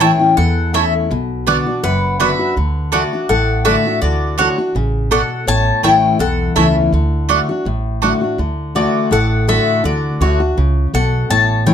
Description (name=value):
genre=bluegrass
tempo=165 BPM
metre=4/4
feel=swing 53% on 8ths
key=D major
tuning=A4 = 440 Hz
part: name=mandolin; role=melody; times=0.0-11.7 s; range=C#5 to A5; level=-18 LUFS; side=left 3 dB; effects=none
part: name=lap resonator guitar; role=second line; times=0.0-11.7 s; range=F#4 to C#5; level=-22 LUFS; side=left 4 dB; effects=none
part: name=picked steel-string acoustic guitar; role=accompaniment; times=0.0-11.7 s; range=E2 to F#4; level=-17 LUFS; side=left 2 dB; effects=none
part: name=mandolin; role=stabs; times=0.0-8.1 s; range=A3 to A5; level=-16 LUFS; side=right 9 dB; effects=none
part: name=upright bass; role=bass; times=0.0-11.7 s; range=F#1 to E2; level=-19 LUFS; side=right 1 dB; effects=none
room=light reverb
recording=close, detailed microphones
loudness=-13 LUFS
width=side -8 dB against mid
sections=0.0-8.4 A section; 8.4-11.7 A section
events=none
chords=0.0 A; 1.1 Bm; 2.6 D; 5.5 A; 6.9 D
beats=0.01 0.38 0.74 | 1.10 1.47 1.83 2.20 | 2.56 2.93 3.29 3.65 | 4.02 4.38 4.75 5.11 | 5.48 5.84 6.21 6.57 | 6.93 7.30 7.66 8.03 | 8.39 8.76 9.12 9.48 | 9.85 10.21 10.58 10.94 | 11.30 11.67